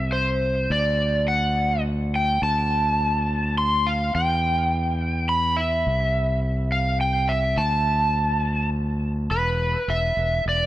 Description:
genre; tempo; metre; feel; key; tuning
post-rock; 104 BPM; 3/4; straight; unclear; A4 = 439 Hz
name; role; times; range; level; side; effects
overdriven slide guitar; melody; 0.0-10.7 s; B4 to C6; -22 LUFS; equal; analog delay
growling fingered electric bass; bass; 0.0-10.7 s; E1 to E2; -24 LUFS; equal; overdrive
room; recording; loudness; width
light reverb, digital ambience; none; -20 LUFS; side -14 dB against mid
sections
0.0-9.3 A section; 9.3-10.7 B section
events
none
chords
0.0 C; 0.7 D5; 4.1 Em; 5.9 C; 7.6 D5; 9.3 E5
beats
0.13 | 0.70 1.28 1.85 | 2.43 3.00 3.58 | 4.15 4.72 5.30 | 5.87 6.45 7.02 | 7.59 8.17 8.74 | 9.31 9.89 10.46

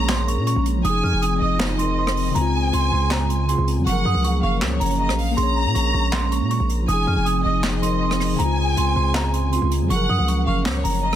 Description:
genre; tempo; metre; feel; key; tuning
hip hop, trap; 159 BPM; 4/4; half-time; Bb minor; A4 = 440 Hz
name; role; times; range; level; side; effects
celesta; melody; 0.0-11.2 s; Ab5 to F6; -26 LUFS; right 3 dB; ping-pong delay
warm studio violin section; second line; 0.0-11.2 s; Db5 to Bb5; -27 LUFS; equal; ping-pong delay
tine electric piano; accompaniment; 0.0-11.2 s; Db3 to Db5; -26 LUFS; moving between left 10 dB and left 1 dB; auto-pan
dark analog pad; sustained chords; 0.0-11.2 s; Db3 to Bb4; -28 LUFS; right 3 dB; chorus, phaser
distorted 808-style bass; bass; 0.0-11.2 s; F1 to Bb2; -22 LUFS; equal; distortion
jazz brush drum kit; drums; 0.1-11.2 s; handclaps, hi-hat, rim click, snare drum; -27 LUFS; right 1 dB; none
room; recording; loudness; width
studio reverb; dense, heavily limited modern master; -18 LUFS; side -11 dB against mid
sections
0.0-11.2 A section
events
none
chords
0.0 Bbm7; 0.8 Fm7; 2.4 Dbmaj7; 3.9 Gbmaj7; 5.4 Bbm7; 6.9 Fm7; 8.4 Dbmaj7; 9.9 Gbmaj7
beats
0.09 0.47 | 0.85 1.22 1.60 1.98 | 2.35 2.73 3.11 3.49 | 3.87 4.24 4.62 5.00 | 5.37 5.75 6.13 6.51 | 6.88 7.26 7.64 8.02 | 8.39 8.77 9.15 9.53 | 9.90 10.28 10.66 11.03

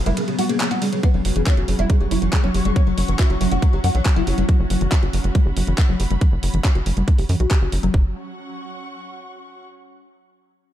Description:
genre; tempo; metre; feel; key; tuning
psychedelic trance; 139 BPM; 4/4; straight; unclear; A4 = 440 Hz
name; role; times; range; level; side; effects
evolving wavetable pad; sustained chords; 0.0-8.0 s; F#3 to C#4; -29 LUFS; right 2 dB; ensemble chorus, built-in reverb, phaser, sidechain pumping
tight sequencer bass; bass; 0.0-8.1 s; F#1 to F#2; -21 LUFS; equal; none
oud; melody; 0.1-4.4 s; C#3 to F#4; -27 LUFS; left 1 dB; phaser, sidechain pumping, dub echo
woody wave-folded pluck; riff; 0.1-8.1 s; E3 to G4; -26 LUFS; moving between left 6 dB and right 5 dB; chorus, auto-pan, sidechain pumping, dub echo
garage drum kit; drums; 0.1-7.9 s; handclaps, hi-hat, ride cymbal; -28 LUFS; equal; overdrive, small room ambience
electronic kick drum; drums; 1.0-8.0 s; none; -16 LUFS; equal; overdrive, small room ambience
muted studio string section; texture; 1.0-9.6 s; C#4 to C#6; -34 LUFS; left 2 dB; sidechain pumping
room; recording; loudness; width
little or no reverb; dark, warm production; -16 LUFS; side -12 dB against mid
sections
0.0-1.0 A section; 1.0-7.9 B section; 7.9-9.7 C section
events
drop 0.0-1.0; fade-out on string section 1.0-7.9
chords
0.0 F#5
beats
0.17 0.60 | 1.03 1.47 1.90 2.33 | 2.76 3.19 3.62 4.05 | 4.49 4.92 5.35 5.78 | 6.21 6.64 7.08 7.51 | 7.94 8.37 8.80 9.23

